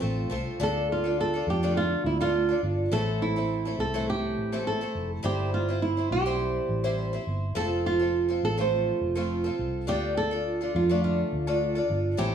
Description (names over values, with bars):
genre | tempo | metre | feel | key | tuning
acoustic pop | 104 BPM | 4/4 | swing 55% on 16ths | unclear | A4 = 439 Hz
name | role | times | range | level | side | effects
flamenco guitar | melody | 0.0-12.3 s | C4 to C5 | -28 LUFS | right 4 dB | none
picked twelve-string acoustic guitar | accompaniment | 0.0-12.3 s | A2 to C5 | -29 LUFS | left 2 dB | none
vintage muted fingered electric bass | bass | 0.0-12.3 s | F1 to F2 | -30 LUFS | equal | none
room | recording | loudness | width
light reverb | studio reverb | -24 LUFS | side -8 dB against mid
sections
0.6-12.3 A section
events
none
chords
0.0 F; 0.6 Dm; 2.9 Am; 5.2 C/G; 7.6 F; 9.9 Dm